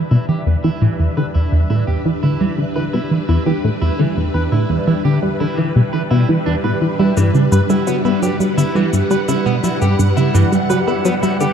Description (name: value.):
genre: ambient, sequencer-driven space music.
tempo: 85 BPM.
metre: 4/4.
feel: straight.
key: E minor.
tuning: A4 = 440 Hz.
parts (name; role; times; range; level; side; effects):
phased string machine; sustained chords; 0.0-11.5 s; G3 to F#5; -21 LUFS; equal; ensemble chorus, phaser.
tight sequenced synth; riff; 0.0-11.5 s; E2 to B3; -15 LUFS; equal; chorus, tape echo.
electric guitar at the edge of break-up; arpeggios; 0.1-11.5 s; E3 to B4; -25 LUFS; right 2 dB; auto-pan, tape echo.
bongos and cabasa; percussion; 7.2-11.5 s; none; -31 LUFS; left 2 dB; tape echo.
room: wet huge ambient reverb, RT60 7.7 s.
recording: dark, warm production.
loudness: -14 LUFS.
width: side -8 dB against mid.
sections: 0.0-11.5 A section.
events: fade-in on clean electric guitar 0.0-11.5; fade-in on string machine 0.0-11.5; filter sweep on synth arpeggio sound 0.0-11.5.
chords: 0.0 Em7; 7.2 Gmaj7.